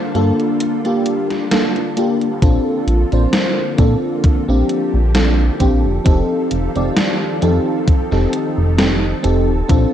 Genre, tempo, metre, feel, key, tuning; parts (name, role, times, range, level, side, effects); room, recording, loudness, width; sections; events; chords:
vaporwave; 66 BPM; 4/4; swing 54% on 16ths; Bb major; A4 = 439 Hz
FM electric piano with soft pad layer; accompaniment; 0.0-9.9 s; Bb3 to D5; -18 LUFS; equal; analog chorus, analog delay
soft string machine; sustained chords; 0.0-9.9 s; D3 to A4; -24 LUFS; equal; ensemble chorus, vintage 12-bit sampler grit
chorused synth bass; bass; 0.1-9.9 s; Eb1 to Bb2; -16 LUFS; equal; tube saturation
gated 80s digital drum machine; drums; 0.1-9.9 s; hi-hat, snare drum; -19 LUFS; equal; gated reverb, gated reverb snare, overdrive
electronic kick drum; drums; 2.4-9.9 s; -14 LUFS; equal
light reverb; cassette tape; -14 LUFS; side -10 dB against mid
0.0-2.4 A section; 2.4-9.9 A section
0.0 Gm9; 2.4 Bbmaj7; 6.1 F7